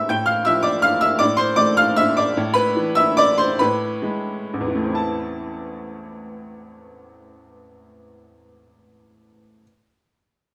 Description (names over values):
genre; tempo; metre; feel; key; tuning
classical, piano waltz; 116-172 BPM; 3/4; rubato; A minor; A4 = 439 Hz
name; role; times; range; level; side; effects
bright upright piano; solo; 0.0-9.6 s; A1 to G6; -20 LUFS; equal; none
room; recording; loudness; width
light reverb; none; -19 LUFS; mono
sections
0.0-5.0 A section; 5.0-7.5 B section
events
slowing down 1.8-5.0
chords
0.1 Dm/A; 2.4 E7/A; 5.0 Am